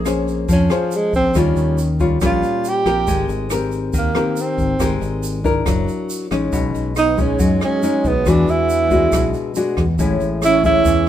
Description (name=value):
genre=bossa nova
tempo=139 BPM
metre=4/4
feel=straight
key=unclear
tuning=A4 = 440 Hz
part: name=breathy tenor saxophone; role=melody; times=0.0-11.1 s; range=F3 to G4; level=-18 LUFS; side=right 3 dB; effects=none
part: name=nylon-string guitar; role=accompaniment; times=0.0-11.1 s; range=A2 to C5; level=-20 LUFS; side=left 4 dB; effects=none
part: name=fingered electric bass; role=bass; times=0.0-11.1 s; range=Gb1 to F#2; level=-21 LUFS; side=equal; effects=none
part: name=jazz brush drum kit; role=drums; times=0.1-11.1 s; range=hi-hat, kick drum, rim click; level=-24 LUFS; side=equal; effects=none
part: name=egg shaker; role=percussion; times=0.1-11.1 s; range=none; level=-34 LUFS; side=right 4 dB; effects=none
part: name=wooden-headed alto flute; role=second line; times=7.0-11.1 s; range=G#3 to C#4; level=-25 LUFS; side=right 7 dB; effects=none
room=light reverb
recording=minimal, uncompressed stereo recording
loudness=-15 LUFS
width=side -11 dB against mid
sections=0.0-6.5 A section; 6.5-11.1 B section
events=tenor saxophone solo 0.0-6.5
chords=0.0 Bbm9; 1.4 Eb9; 3.1 Abmaj9; 5.7 Gb7alt; 6.5 B69; 8.3 E9; 10.0 Amaj7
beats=0.06 0.49 0.92 | 1.35 1.78 2.21 2.64 | 3.07 3.50 3.94 4.37 | 4.80 5.23 5.66 6.09 | 6.53 6.96 7.39 7.83 | 8.26 8.69 9.12 9.55 | 9.99 10.42 10.85